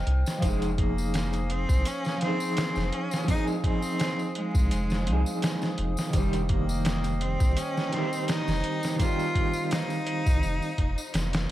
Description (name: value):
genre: trip hop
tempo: 84 BPM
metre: 4/4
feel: swing 54% on 16ths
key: F minor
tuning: A4 = 441 Hz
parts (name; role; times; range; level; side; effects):
- clear cello; melody; 0.0-11.5 s; G3 to F4; -32 LUFS; left 1 dB; tape echo
- warbly tape-like pad; sustained chords; 0.0-11.5 s; C5 to F6; -38 LUFS; right 1 dB; chorus, built-in reverb, vintage 12-bit sampler grit
- round analog bass; bass; 0.0-11.5 s; F1 to C2; -27 LUFS; equal; none
- trip hop sampler-style drum kit; drums; 0.1-11.5 s; hi-hat, kick drum, snare drum; -28 LUFS; equal; none
- tambourine; percussion; 0.3-11.5 s; none; -43 LUFS; left 2 dB; none
- mellow electric guitar; accompaniment; 0.4-10.8 s; Eb3 to C5; -31 LUFS; right 1 dB; tremolo
room: digital ambience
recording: vinyl crackle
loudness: -24 LUFS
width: side -14 dB against mid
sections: 0.0-11.5 A section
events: none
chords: 0.4 Fm7; 6.1 Cm/F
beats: | 0.42 1.14 1.85 2.57 | 3.28 4.00 4.71 5.42 | 6.14 6.85 7.57 8.28 | 8.99 9.71 10.42 11.14